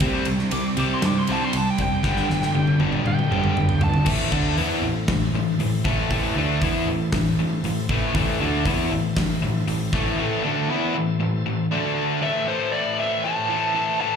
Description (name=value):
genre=hard rock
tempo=118 BPM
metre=4/4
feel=straight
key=A minor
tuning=A4 = 440 Hz
part: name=bright tonewheel organ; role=sustained chords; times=0.0-14.2 s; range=G3 to A5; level=-36 LUFS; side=right 1 dB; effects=none
part: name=cranked stack guitar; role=riff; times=0.0-14.2 s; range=G2 to E4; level=-25 LUFS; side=left 8 dB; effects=overdrive, spring reverb, slapback echo
part: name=distorted electric guitar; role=riff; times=0.0-12.2 s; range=G2 to E4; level=-30 LUFS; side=right 1 dB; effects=distortion, slapback echo
part: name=overdriven semi-hollow guitar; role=riff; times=0.0-12.2 s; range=G2 to E4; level=-27 LUFS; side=right 8 dB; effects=none
part: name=vintage muted picked electric bass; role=bass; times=0.0-10.2 s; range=F1 to G2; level=-27 LUFS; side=equal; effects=none
part: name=big rock drum kit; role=drums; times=0.0-10.0 s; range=crash cymbal, hi-hat, kick drum, ride cymbal, snare drum, toms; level=-26 LUFS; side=equal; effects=none
part: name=biting lead guitar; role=melody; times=0.5-4.1, 12.2-14.2 s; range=C5 to D6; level=-26 LUFS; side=right 2 dB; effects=overdrive, slapback echo, tape echo
room=small room reverb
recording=live gig heard through the venue's PA, club reverb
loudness=-20 LUFS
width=side -7 dB against mid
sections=0.0-4.1 A section; 4.1-12.2 B section; 12.2-14.2 C section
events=lead electric guitar solo 0.0-4.1; drum fill 2.0-4.1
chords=0.0 C; 2.0 G; 4.1 Am; 11.7 D5; 12.2 Am